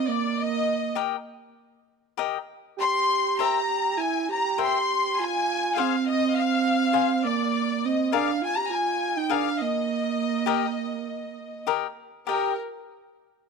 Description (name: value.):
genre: mexican folk, mariachi.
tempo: 101 BPM.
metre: 4/4.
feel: rubato.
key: Eb major.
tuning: A4 = 440 Hz.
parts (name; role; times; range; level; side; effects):
bright studio violin section; melody; 0.0-12.6 s; Bb4 to C6; -26 LUFS; left 3 dB; none.
breathy flute-like synth lead; second line; 0.0-12.6 s; Bb3 to G4; -27 LUFS; right 9 dB; chorus.
cavaquinho; accompaniment; 1.0-12.5 s; G4 to Ab5; -27 LUFS; left 16 dB; none.
room: light reverb, small room ambience.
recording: 1960s-style stereo with parts hard left and right.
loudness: -23 LUFS.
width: side -5 dB against mid.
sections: 0.0-12.3 A section; 12.3-13.5 B section.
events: none.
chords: 0.4 Eb/Bb; 2.8 C7; 5.2 Fm; 7.5 Bb7; 9.9 Eb.